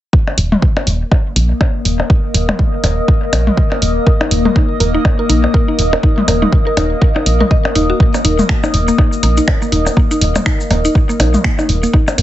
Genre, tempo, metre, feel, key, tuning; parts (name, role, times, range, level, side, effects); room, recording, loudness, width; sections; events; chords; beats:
minimal techno; 122 BPM; 4/4; swing 58% on 16ths; A4 = 439 Hz
electronic kick drum; drums; 0.1-12.1 s; -12 LUFS; equal
warbly tape-like pad; texture; 1.0-12.2 s; Bb3 to Eb6; -19 LUFS; left 2 dB; chorus, built-in reverb, phaser, sidechain pumping
electronic percussion blips and toms; percussion; 0.3-12.2 s; -19 LUFS; left 1 dB; overdrive, dub echo
woody FM bass; bass; 0.4-12.2 s; Eb1 to Bb1; -15 LUFS; equal; sidechain pumping
house drum kit; drums; 0.4-12.2 s; cabasa, finger snaps, hi-hat; -21 LUFS; right 1 dB
mallet-like synth pluck; riff; 4.1-12.2 s; Bb3 to Eb5; -19 LUFS; equal; chorus, cassette tape, sidechain pumping, ping-pong delay
light reverb; heavily compressed radio sound, multiband compression, nothing above 8.0 kHz; -11 LUFS; side -13 dB against mid
0.1-12.2 A section
0.1 Eb5
| 0.13 0.62 1.12 1.61 | 2.10 2.59 3.08 3.58 | 4.07 4.56 5.05 5.54 | 6.03 6.53 7.02 7.51 | 8.00 8.49 8.98 9.48 | 9.97 10.46 10.95 11.44 | 11.94